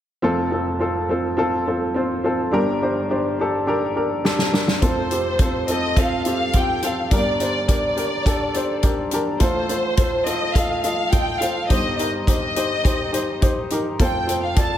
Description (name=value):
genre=piano-driven pop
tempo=105 BPM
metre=4/4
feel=straight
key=F mixolydian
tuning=A4 = 440 Hz
part: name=clear upright piano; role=accompaniment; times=0.2-14.8 s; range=F1 to A5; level=-21 LUFS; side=equal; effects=none
part: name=natural country drum kit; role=drums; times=4.2-14.7 s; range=hi-hat, kick drum, snare drum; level=-21 LUFS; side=equal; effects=none
part: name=warm studio violin section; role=melody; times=4.8-14.8 s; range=C5 to A5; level=-24 LUFS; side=equal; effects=none
room=moderate scoring stage reverb, RT60 1.7 s, small room ambience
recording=big arena sound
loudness=-18 LUFS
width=side -11 dB against mid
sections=0.2-4.8 A section; 4.8-14.8 B section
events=drum fill 4.2-4.8; upright piano fill 8.5-9.4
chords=0.2 F; 2.5 Gm; 4.8 F; 7.1 Gm; 9.4 F/A; 11.7 Cm/G; 14.0 F